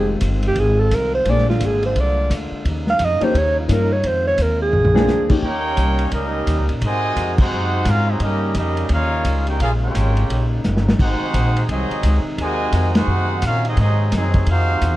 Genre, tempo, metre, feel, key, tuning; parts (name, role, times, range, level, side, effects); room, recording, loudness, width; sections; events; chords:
jazz, big band swing; 173 BPM; 4/4; swing 63% on 8ths; A4 = 437 Hz
mellow alto saxophone; melody; 0.0-5.3 s; F4 to F5; -19 LUFS; right 2 dB
warm baby grand piano; accompaniment; 0.0-5.4 s; F3 to Ab4; -24 LUFS; left 4 dB
warm trombone section; sustained chords; 0.0-15.0 s; C3 to Gb4; -28 LUFS; left 1 dB
upright bass; bass; 0.0-15.0 s; F1 to Bb2; -19 LUFS; equal
vintage drum kit; drums; 0.2-14.9 s; crash cymbal, hi-hat, kick drum, ride cymbal, snare drum, toms; -24 LUFS; equal
warm trumpet section; melody; 5.4-15.0 s; C4 to Ab5; -23 LUFS; right 1 dB
muted trombone section; second line; 5.4-15.0 s; C3 to G4; -28 LUFS; right 1 dB
light reverb; dark, warm production; -16 LUFS; side -16 dB against mid
0.0-5.4 A section; 5.4-15.0 B section
alto saxophone solo 0.0-5.4; drum fill 4.7-5.1, 10.6-11.0; band accent 7.3, 12.9
0.0 Fm7; 1.3 Bb7; 2.7 Eb7; 4.0 Fm7; 4.7 Bb7; 5.4 Eb7; 6.8 Ab7; 8.2 Eb7; 9.6 Bbm7; 10.3 Eb7; 11.0 Ab7